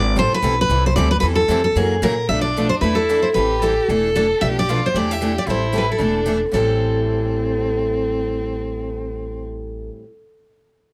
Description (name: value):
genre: acoustic string swing (jazz manouche)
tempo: 226 BPM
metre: 4/4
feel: swing 57% on 8ths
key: A minor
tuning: A4 = 440 Hz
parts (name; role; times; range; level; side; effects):
- picked steel-string acoustic guitar; melody; 0.0-9.9 s; G#4 to E5; -22 LUFS; equal; none
- upright bass; bass; 0.0-9.9 s; E1 to A#2; -26 LUFS; equal; none
- picked steel-string acoustic guitar; accompaniment; 0.2-10.1 s; A2 to A4; -28 LUFS; equal; none
- picked steel-string acoustic guitar; accompaniment; 0.2-10.1 s; A2 to B4; -32 LUFS; equal; none
- warm violin; second line; 2.3-9.4 s; C4 to A4; -29 LUFS; equal; none
room: moderate studio reverb, RT60 0.7 s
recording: none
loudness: -19 LUFS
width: mono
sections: 0.0-2.3 A section; 2.3-6.5 B section; 6.5-8.7 C section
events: none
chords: 0.2 Am9; 1.8 F#7; 2.3 Bm7b5; 2.8 E7sus4; 3.4 Am7; 3.9 E7sus4; 4.4 Bm7b5; 4.9 E7sus4; 5.5 Am7; 6.0 E7sus4; 6.5 Am7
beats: | 0.17 0.44 0.70 0.97 | 1.23 1.50 1.76 2.03 | 2.29 2.56 2.82 3.09 | 3.35 3.62 3.88 4.15 | 4.41 4.68 4.95 5.21 | 5.48 5.74 6.01 6.27 | 6.54 6.81 7.07 7.34 | 7.61 7.87 8.14 8.40